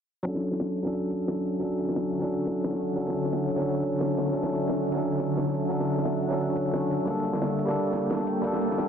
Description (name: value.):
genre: liquid drum and bass.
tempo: 176 BPM.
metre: 4/4.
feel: straight.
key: D major.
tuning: A4 = 437 Hz.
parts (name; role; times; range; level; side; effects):
barky tine electric piano; accompaniment; 0.2-8.9 s; F#3 to A4; -27 LUFS; equal; vintage 12-bit sampler grit, low-pass filter, tape echo.
shimmering ambient pad; sustained chords; 1.8-8.9 s; D3 to A5; -30 LUFS; equal; chorus, built-in reverb, sidechain pumping.
cloth-damped thuddy drum kit; drums; 0.3-8.9 s; hi-hat, snare drum; -35 LUFS; equal; high-pass filter on hats, studio reverb, high-pass filter on snare, high-pass filter on room.
electronic hi-hat; drums; 0.3-8.9 s; none; -53 LUFS; right 8 dB; none.
electronic kick drum; drums; 0.3-8.5 s; none; -46 LUFS; equal; none.
room: moderate lush hall reverb, RT60 1.9 s.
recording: dense, heavily limited modern master, low-pass filter.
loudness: -25 LUFS.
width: side -7 dB against mid.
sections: 0.3-8.9 A section.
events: filter sweep on tine electric piano 0.3-8.9; filter sweep on ambient pad 0.3-8.9; filter sweep 0.3-8.9.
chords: 0.3 Dmaj7; 7.1 Gmadd9.